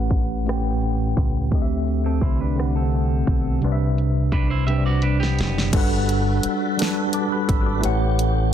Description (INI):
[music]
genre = slow six-eight R&B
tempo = 57 BPM (dotted quarters)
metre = 6/8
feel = straight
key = G major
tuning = A4 = 439 Hz
[part]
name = mellow tine electric piano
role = accompaniment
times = 0.0-8.5 s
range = A2 to F#6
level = -23 LUFS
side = equal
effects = medium stereo tremolo
[part]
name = deep dub fingered electric bass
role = bass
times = 0.0-8.5 s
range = F#1 to D2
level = -22 LUFS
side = equal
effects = none
[part]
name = pop drum kit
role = drums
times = 0.1-8.4 s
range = crash cymbal, hi-hat, kick drum, rim click, snare drum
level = -23 LUFS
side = equal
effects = none
[part]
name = electric guitar at the edge of break-up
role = second line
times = 2.1-5.7 s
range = B3 to E5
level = -29 LUFS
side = right 4 dB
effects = none
[part]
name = tonewheel organ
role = sustained chords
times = 5.7-8.5 s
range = G3 to B4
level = -29 LUFS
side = equal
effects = overdrive, chorus vibrato, slow rotary speaker
[sound]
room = little or no reverb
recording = dense, heavily limited modern master, low-pass filter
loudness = -19 LUFS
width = side -10 dB against mid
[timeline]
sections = 0.0-5.7 A section; 5.7-8.5 B section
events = filter sweep 0.0-5.7; drum fill 4.7-5.7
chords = 0.0 A13; 1.5 D9sus4; 3.6 Cmaj9; 5.7 Gmaj9; 7.8 A13